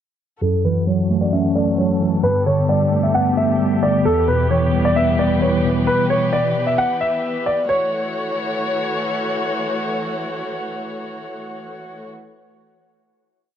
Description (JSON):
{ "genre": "hip hop, trap", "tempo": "132 BPM", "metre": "4/4", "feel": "half-time", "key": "F# phrygian", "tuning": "A4 = 440 Hz", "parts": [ { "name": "dark baby grand piano", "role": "melody", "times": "0.4-9.0 s", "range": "A4 to F#5", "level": "-20 LUFS", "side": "equal", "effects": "low-pass filter" }, { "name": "mellow tine electric piano", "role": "accompaniment", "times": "0.4-6.8 s", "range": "E2 to C#4", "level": "-18 LUFS", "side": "equal", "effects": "medium stereo tremolo, low-pass filter" }, { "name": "muted chamber string section", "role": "sustained chords", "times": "0.4-12.1 s", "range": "D3 to C#5", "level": "-24 LUFS", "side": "left 1 dB", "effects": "low-pass filter" } ], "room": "light reverb, small room ambience", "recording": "dark, warm production", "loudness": "-16 LUFS", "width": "side -9 dB against mid", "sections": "0.4-7.7 breakdown; 7.7-11.3 final chord", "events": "filter sweep 0.4-7.7", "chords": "0.4 F#m7; 2.2 Gadd9; 4.1 Em; 7.7 F#m7" }